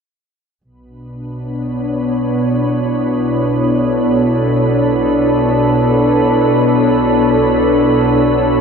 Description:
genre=ambient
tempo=free time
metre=none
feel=none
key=B minor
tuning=A4 = 440 Hz
part: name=warbly tape-like pad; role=sustained chords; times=1.1-8.6 s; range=B2 to C#5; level=-13 LUFS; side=equal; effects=chorus, built-in reverb
part: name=rich chamber double bass section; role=bass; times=0.6-8.6 s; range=B1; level=-30 LUFS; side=equal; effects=tube saturation
part: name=organ-like drone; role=drone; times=1.2-8.6 s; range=B3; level=-20 LUFS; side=left 2 dB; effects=ensemble chorus, built-in reverb
room=wet huge ambient reverb, RT60 7.8 s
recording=none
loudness=-12 LUFS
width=side -6 dB against mid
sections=0.6-8.6 A section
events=fade-in on double bass section 0.6-8.6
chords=0.6 Bm11

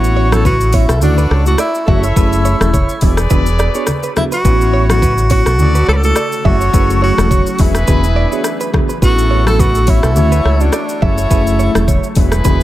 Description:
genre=afrobeats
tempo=105 BPM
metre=4/4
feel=swing 55% on 16ths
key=A major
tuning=A4 = 441 Hz
part: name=breathy tenor saxophone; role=melody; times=0.0-12.2 s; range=D4 to B4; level=-18 LUFS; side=equal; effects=dub echo
part: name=clear horn section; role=second line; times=0.0-12.6 s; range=E4 to E5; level=-24 LUFS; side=left 1 dB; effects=dub echo
part: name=mellow tine electric piano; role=accompaniment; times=0.0-12.6 s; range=A3 to G#4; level=-21 LUFS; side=equal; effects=medium stereo tremolo, dub echo
part: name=deep dub fingered electric bass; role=bass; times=0.0-12.6 s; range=E1 to D2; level=-14 LUFS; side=equal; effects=none
part: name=afro-pop drum kit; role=drums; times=0.0-12.6 s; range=hi-hat, kick drum, rim click, shaker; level=-16 LUFS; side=equal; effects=none
part: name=direct-recorded clean electric guitar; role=riff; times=0.2-12.6 s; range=A4 to E5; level=-24 LUFS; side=right 7 dB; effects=dub echo
part: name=congas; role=percussion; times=0.3-12.6 s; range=none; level=-22 LUFS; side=left 1 dB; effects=none
part: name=glassy FM pad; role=sustained chords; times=5.0-12.6 s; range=C#3 to C#5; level=-24 LUFS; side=equal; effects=ensemble chorus, built-in reverb, sidechain pumping
room=digital ambience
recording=echo-heavy mix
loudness=-10 LUFS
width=side -14 dB against mid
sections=0.0-12.6 A section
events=none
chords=0.0 A69; 1.0 Dmaj7; 1.9 F#m7; 3.0 E7; 4.4 A69; 5.6 Dmaj7; 6.4 F#m7; 7.6 E7; 9.0 A69; 10.2 Dmaj7; 11.0 F#m7

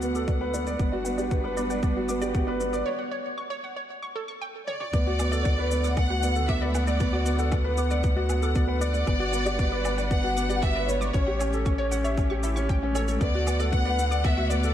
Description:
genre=piano and strings electronica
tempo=116 BPM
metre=4/4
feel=straight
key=D major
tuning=A4 = 442 Hz
part: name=rich studio string section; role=sustained chords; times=0.0-14.7 s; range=D3 to F#5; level=-35 LUFS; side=equal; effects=sidechain pumping
part: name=felt-muted upright piano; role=riff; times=0.0-14.7 s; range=B3 to E5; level=-29 LUFS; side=right 1 dB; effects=digital delay
part: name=round analog bass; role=bass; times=0.0-14.7 s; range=G1 to D2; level=-28 LUFS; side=equal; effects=sidechain pumping
part: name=electronic shaker, toms and woodblock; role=drums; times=0.0-14.7 s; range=none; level=-40 LUFS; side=equal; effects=high-pass filter on perc, high-pass filter on toms
part: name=analog pluck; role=arpeggios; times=0.1-14.6 s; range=A4 to D6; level=-36 LUFS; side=right 1 dB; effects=chorus, sidechain pumping, digital delay
part: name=electronic kick drum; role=drums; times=0.3-14.3 s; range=none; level=-25 LUFS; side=equal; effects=none
part: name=warm symphonic violin section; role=melody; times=4.7-14.7 s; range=C#5 to F#5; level=-30 LUFS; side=left 1 dB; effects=digital delay
room=moderate concert hall reverb, RT60 2.0 s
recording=dark, warm production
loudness=-23 LUFS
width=side -11 dB against mid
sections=0.0-4.9 A section; 4.9-14.7 B section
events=build-up 0.0-4.9; filter sweep on synth arpeggio sound 0.0-4.9; break 2.9-4.9; drum fill 4.7; drop 4.9-14.7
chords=0.0 D6; 0.8 Gmaj7; 2.9 N.C.; 4.9 D6; 9.1 Gmaj7; 11.1 A7; 13.2 D6

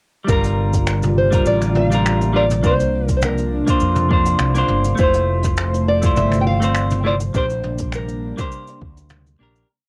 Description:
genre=sunset chillout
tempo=102 BPM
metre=4/4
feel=swing 54% on 16ths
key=Bb lydian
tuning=A4 = 440 Hz
part: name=semi-hollow electric guitar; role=accompaniment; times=0.2-9.7 s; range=G3 to C5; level=-24 LUFS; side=equal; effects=cassette tape
part: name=nylon-string guitar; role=melody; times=0.3-8.8 s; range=Bb4 to G5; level=-24 LUFS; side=equal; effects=cassette tape, tape echo
part: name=airy breathy pad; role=sustained chords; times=0.3-9.7 s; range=C3 to C5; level=-27 LUFS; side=equal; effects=chorus, cassette tape
part: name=mellow fretless electric bass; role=bass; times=0.3-9.6 s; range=F1 to F2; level=-23 LUFS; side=equal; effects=none
part: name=electronic kick drum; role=drums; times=0.3-8.9 s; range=none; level=-23 LUFS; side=equal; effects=overdrive, cassette tape
part: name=jazz brush drum kit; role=drums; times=0.3-9.7 s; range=cabasa, finger snaps, hi-hat, toms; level=-29 LUFS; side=equal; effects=cassette tape
room=moderate booth ambience, RT60 0.3 s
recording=home recording on cassette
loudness=-18 LUFS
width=mono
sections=0.3-9.7 groove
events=fade-out 6.6-9.7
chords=0.3 Gm7; 2.6 C9sus4; 5.0 Fmaj7; 7.3 Bb69

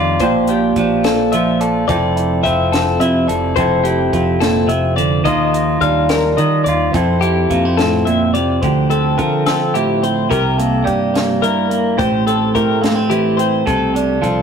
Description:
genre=math rock and midwest emo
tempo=71 BPM (dotted quarters)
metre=6/8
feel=straight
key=F major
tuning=A4 = 436 Hz
part: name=clean electric guitar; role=accompaniment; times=0.0-14.4 s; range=F2 to A4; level=-16 LUFS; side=right 3 dB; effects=none
part: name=twelve-string electric guitar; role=arpeggios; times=0.0-14.4 s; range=F4 to F5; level=-19 LUFS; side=left 7 dB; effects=none
part: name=modern bright fingered electric bass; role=bass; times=0.0-14.4 s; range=F1 to Eb3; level=-20 LUFS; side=left 1 dB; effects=none
part: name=compact cocktail drum kit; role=drums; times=0.2-14.4 s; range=hi-hat, kick drum, snare drum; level=-24 LUFS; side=left 1 dB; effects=none
room=moderate stone room reverb, RT60 1.0 s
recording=rough rehearsal-room recording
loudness=-13 LUFS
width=side -7 dB against mid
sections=0.0-8.6 A section; 8.6-14.4 B section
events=none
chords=0.2 Bb69; 1.9 Fmaj7; 5.3 Ebmaj9; 6.9 Fmaj7; 8.6 Dm11; 10.3 C7; 12.0 Am7; 13.7 F69/C

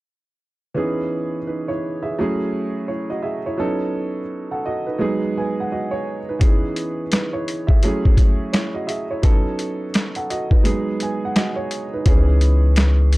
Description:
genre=hip hop, boom-bap hip-hop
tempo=85 BPM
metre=4/4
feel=swing 60% on 16ths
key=C# minor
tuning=A4 = 440 Hz
part: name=dark upright piano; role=accompaniment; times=0.7-13.2 s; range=E3 to G#5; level=-22 LUFS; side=right 2 dB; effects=cassette tape
part: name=boom bap sampler-style drum kit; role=drums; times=6.4-13.2 s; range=hi-hat, kick drum, snare drum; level=-16 LUFS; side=equal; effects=none
part: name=soft dub sub bass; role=bass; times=12.1-13.2 s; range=C#2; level=-14 LUFS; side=equal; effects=none
room=little or no reverb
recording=dark, warm production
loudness=-18 LUFS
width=side -20 dB against mid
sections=0.8-12.1 A section; 12.1-13.2 B section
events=break 10.7-12.1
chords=0.8 C#m7; 2.2 F#m7; 3.6 B7; 5.0 G#m7; 6.4 C#m7; 7.8 F#m7; 9.2 B7; 10.7 G#m7; 12.1 C#m7

